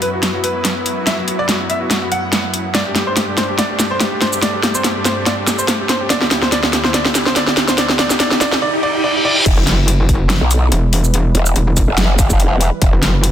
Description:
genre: heavy wobble dubstep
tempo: 143 BPM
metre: 4/4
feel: swing 54% on 16ths, half-time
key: E minor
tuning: A4 = 440 Hz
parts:
  - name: clear baby grand piano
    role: melody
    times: 0.0-9.4 s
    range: F#4 to F#5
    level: -20 LUFS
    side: equal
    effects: tape echo
  - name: supersaw pad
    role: sustained chords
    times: 0.0-13.3 s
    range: D2 to B4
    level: -24 LUFS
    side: equal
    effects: sidechain pumping, low-pass filter
  - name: dubstep drum kit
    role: drums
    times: 0.0-13.3 s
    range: crash cymbal, hi-hat, shaker, snare drum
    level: -17 LUFS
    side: equal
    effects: none
  - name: riser and reverse cymbal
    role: sound effects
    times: 0.4-9.5 s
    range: none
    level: -23 LUFS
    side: right 1 dB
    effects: none
  - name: growl bass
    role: bass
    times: 9.5-12.9 s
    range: E1 to B1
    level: -14 LUFS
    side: equal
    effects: chorus, overdrive
  - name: electronic kick drum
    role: drums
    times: 9.5-12.9 s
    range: none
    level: -15 LUFS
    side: equal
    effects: none
  - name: metallic wobble bass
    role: bass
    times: 9.6-13.3 s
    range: E1 to F#1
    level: -14 LUFS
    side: equal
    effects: chorus, overdrive
room: light reverb, digital ambience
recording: dense, heavily limited modern master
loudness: -13 LUFS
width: side -10 dB against mid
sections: 0.0-9.5 A section; 9.5-13.3 B section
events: build-up 0.0-9.5; drum fill 0.0-8.6; reverse cymbal 8.6-9.5; drop 9.5-13.3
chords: 0.0 Bsus4/F#; 2.7 Gsus2; 6.1 Dsus2; 9.5 Em

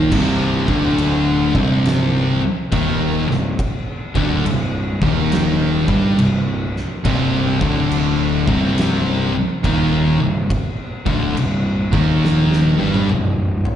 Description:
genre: stoner and doom metal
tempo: 69 BPM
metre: 4/4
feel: swing 65% on 8ths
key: C minor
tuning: A4 = 440 Hz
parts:
  - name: distorted electric guitar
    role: riff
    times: 0.0-13.5 s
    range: C2 to G3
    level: -24 LUFS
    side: right 3 dB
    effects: overdrive, slapback echo
  - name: thick fuzz guitar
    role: riff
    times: 0.0-13.5 s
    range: C2 to G3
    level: -19 LUFS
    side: left 5 dB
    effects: distortion, slapback echo
  - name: thick fuzz guitar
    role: riff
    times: 0.0-13.5 s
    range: C2 to G3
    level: -23 LUFS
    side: right 11 dB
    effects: distortion
  - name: fuzz picked electric bass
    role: bass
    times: 0.0-13.6 s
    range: C1 to G1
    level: -23 LUFS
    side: right 1 dB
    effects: overdrive
  - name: oversized low-tuned drum kit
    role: drums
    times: 0.1-13.8 s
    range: crash cymbal, kick drum, snare drum, toms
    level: -23 LUFS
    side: equal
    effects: none
room: light reverb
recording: live gig heard through the venue's PA, recital hall reverb, nothing above 11.0 kHz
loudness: -15 LUFS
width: side -10 dB against mid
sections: 0.1-13.8 A section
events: drum fill 12.2-13.8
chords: 0.1 Cm

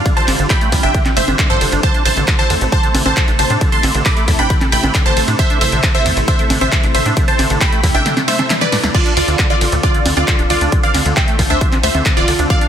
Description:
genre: uplifting trance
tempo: 135 BPM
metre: 4/4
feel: straight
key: D dorian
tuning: A4 = 440 Hz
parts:
  - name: wide unison pluck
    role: melody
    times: 0.0-12.7 s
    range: F4 to D6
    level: -17 LUFS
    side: right 1 dB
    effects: phaser, sidechain pumping, ping-pong delay
  - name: analog string pad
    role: sustained chords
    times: 0.0-12.7 s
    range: C3 to A4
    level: -23 LUFS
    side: left 1 dB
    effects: ensemble chorus, sidechain pumping
  - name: liquid acid bass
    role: arpeggios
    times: 0.0-12.7 s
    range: D2 to D4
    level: -22 LUFS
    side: right 2 dB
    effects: chorus, sidechain pumping, ping-pong delay
  - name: electronic kick drum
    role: drums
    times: 0.1-12.6 s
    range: none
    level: -15 LUFS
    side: equal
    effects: overdrive
  - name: punchy analog drum machine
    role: drums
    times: 0.1-12.7 s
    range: congas, crash cymbal, handclaps, hi-hat, ride cymbal, snare drum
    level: -19 LUFS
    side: equal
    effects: none
  - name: tight sequencer bass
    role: bass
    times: 0.3-12.5 s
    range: D1 to A2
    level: -19 LUFS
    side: equal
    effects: sidechain pumping
room: light reverb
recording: dense, heavily limited modern master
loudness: -12 LUFS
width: side -9 dB against mid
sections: 0.0-8.9 A section; 8.9-12.7 A section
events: drop 0.0-8.9, 8.9-12.7; kick drops out 8.1-8.9; drum fill 8.1-8.9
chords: 0.0 Gsus4; 1.8 Am; 8.9 Dm7

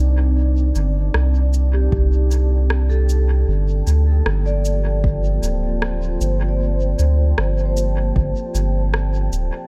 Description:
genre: ambient dub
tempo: 77 BPM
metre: 4/4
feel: straight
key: unclear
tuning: A4 = 439 Hz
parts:
  - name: deep dark ambient pad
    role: sustained chords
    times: 0.0-9.7 s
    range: Bb3 to A5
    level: -30 LUFS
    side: equal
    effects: chorus, built-in reverb
  - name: vibraphone with medium mallets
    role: arpeggios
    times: 0.0-9.7 s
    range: G4 to D5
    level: -31 LUFS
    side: equal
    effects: low-pass filter, analog delay
  - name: soft dub sub bass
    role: bass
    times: 0.0-9.5 s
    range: D1 to D2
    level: -19 LUFS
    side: equal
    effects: none
  - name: electronic shaker and rim click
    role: drums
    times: 0.8-9.5 s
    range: none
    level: -30 LUFS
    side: equal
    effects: small room ambience, dub echo
  - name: electronic kick drum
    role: drums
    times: 1.9-8.3 s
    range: none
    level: -24 LUFS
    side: equal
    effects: small room ambience
room: digital ambience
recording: echo-heavy mix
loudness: -19 LUFS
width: mono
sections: 0.0-9.7 A section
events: filter sweep on vibraphone 0.0-9.7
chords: 0.0 Cm69; 3.5 Gm11

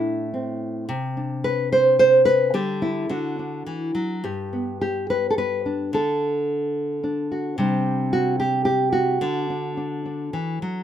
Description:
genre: folk, solo fingerstyle acoustic guitar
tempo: 108 BPM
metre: 3/4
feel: rubato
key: unclear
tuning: A4 = 440 Hz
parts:
  - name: nylon-string guitar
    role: solo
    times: 0.0-10.8 s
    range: G2 to C5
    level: -20 LUFS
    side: equal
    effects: none
room: light reverb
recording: minimal, uncompressed stereo recording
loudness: -20 LUFS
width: side -10 dB against mid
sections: 0.0-10.8 A section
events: none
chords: 0.0 Am; 0.9 Csus2; 2.5 G5/D; 3.1 D; 4.2 G; 5.9 D; 7.6 Csus2; 9.2 Dadd9

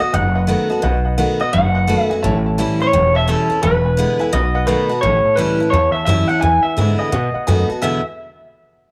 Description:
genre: rockabilly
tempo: 172 BPM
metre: 4/4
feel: swing 63% on 8ths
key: E major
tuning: A4 = 437 Hz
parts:
  - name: electric guitar through a small old amp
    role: melody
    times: 0.0-8.0 s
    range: A4 to G#5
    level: -20 LUFS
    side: equal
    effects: tape echo
  - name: dark upright piano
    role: accompaniment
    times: 0.0-8.0 s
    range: B4 to B5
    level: -29 LUFS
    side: equal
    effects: none
  - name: picked steel-string acoustic guitar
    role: accompaniment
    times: 0.0-8.0 s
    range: E2 to F#4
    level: -22 LUFS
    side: equal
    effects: none
  - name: upright bass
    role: bass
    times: 0.0-8.0 s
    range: E1 to B2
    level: -21 LUFS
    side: equal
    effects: none
room: light reverb, small room ambience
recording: none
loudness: -16 LUFS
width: mono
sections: 0.0-5.0 A section; 5.0-7.8 B section; 7.8-8.9 C section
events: none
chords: 0.0 B7; 2.2 A7; 3.6 E7; 4.3 B7; 5.0 A7; 6.4 E7; 7.1 B7; 7.8 E7

